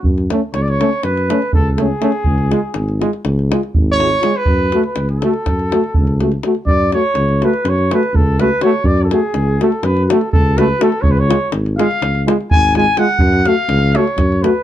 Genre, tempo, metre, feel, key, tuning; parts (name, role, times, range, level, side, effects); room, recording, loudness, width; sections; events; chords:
balkan folk, Balkan brass band; 246 BPM (eighths); 9/8; straight; F# harmonic minor; A4 = 441 Hz
mellow trumpet; melody; 0.0-14.6 s; G#4 to G#5; -18 LUFS; equal; plate reverb
dark tuba; bass; 0.0-14.4 s; G#1 to F#2; -17 LUFS; equal
davul; percussion; 0.0-14.5 s; -18 LUFS; equal
bright trombone; accompaniment; 0.3-14.5 s; G#3 to A3; -19 LUFS; right 6 dB
warm euphonium; accompaniment; 0.3-14.5 s; C#4 to F#4; -19 LUFS; left 7 dB
light reverb; dark, warm production; -13 LUFS; side -12 dB against mid
0.0-14.6 A section
trumpet solo 0.0-14.6
0.0 F#m; 2.3 C#; 4.5 F#m; 11.0 C#; 13.2 F#m